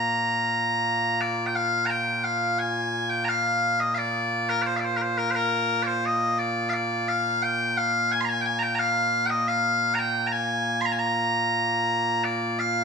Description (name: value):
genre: scottish traditional, Scottish pipe music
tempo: 87 BPM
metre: 4/4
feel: straight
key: Bb mixolydian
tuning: A4 = 439 Hz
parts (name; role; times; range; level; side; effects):
- loud bright bagpipes; solo; 0.0-12.8 s; Bb2 to C6; -22 LUFS; equal; none
room: wet stone room reverb, RT60 1.2 s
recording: band playing live in one room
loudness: -22 LUFS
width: side -5 dB against mid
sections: 0.0-1.2 A section; 1.2-12.2 B section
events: none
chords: none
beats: 0.51 | 1.20 1.89 2.58 3.27 | 3.96 4.65 5.34 6.03 | 6.72 7.41 8.10 8.79 | 9.48 10.17 10.86 11.55 | 12.24